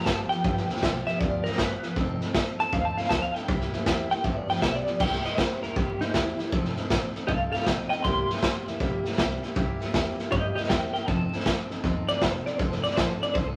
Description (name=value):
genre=rockabilly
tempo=158 BPM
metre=4/4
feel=swing 64% on 8ths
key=unclear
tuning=A4 = 439 Hz
part: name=clean electric guitar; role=melody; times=0.0-13.6 s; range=Eb4 to C6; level=-31 LUFS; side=equal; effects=tremolo
part: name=picked steel-string acoustic guitar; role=accompaniment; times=0.0-13.6 s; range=G2 to A4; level=-35 LUFS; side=equal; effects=none
part: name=upright bass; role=bass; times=0.1-13.6 s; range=F1 to G2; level=-38 LUFS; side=equal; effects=none
part: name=raw garage drum kit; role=drums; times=0.1-13.5 s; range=crash cymbal, hi-hat, kick drum, snare drum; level=-29 LUFS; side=equal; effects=none
room=moderate studio reverb, RT60 0.7 s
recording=vinyl crackle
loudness=-27 LUFS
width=mono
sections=0.0-5.0 A section; 5.0-13.6 B section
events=clean electric guitar solo 0.0-5.0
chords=0.0 G7; 2.0 F7; 3.5 C7; 4.2 G7; 5.0 C7; 6.5 F7; 8.0 C7; 11.1 F7